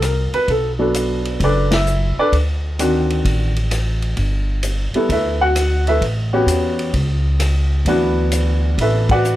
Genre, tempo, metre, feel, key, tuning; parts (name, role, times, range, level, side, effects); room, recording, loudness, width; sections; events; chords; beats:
jazz piano trio; 130 BPM; 4/4; swing 68% on 8ths; D major; A4 = 441 Hz
warm upright piano; melody; 0.0-9.4 s; Eb3 to F#5; -18 LUFS; equal
upright bass; bass; 0.0-9.4 s; F#1 to E2; -18 LUFS; equal
vintage drum kit; drums; 0.0-9.4 s; hi-hat, kick drum, ride cymbal, rim click, snare drum; -25 LUFS; left 1 dB
light reverb; -15 LUFS; side -14 dB against mid
0.0-9.4 A section
band accent 1.6, 9.0
0.5 Bm7; 2.3 D7b9; 4.2 G69; 6.0 A13; 7.9 D69
0.02 | 0.48 0.94 1.40 1.86 | 2.32 2.78 3.24 3.70 | 4.17 4.63 5.09 5.55 | 6.01 6.47 6.93 7.39 | 7.86 8.32 8.78 9.24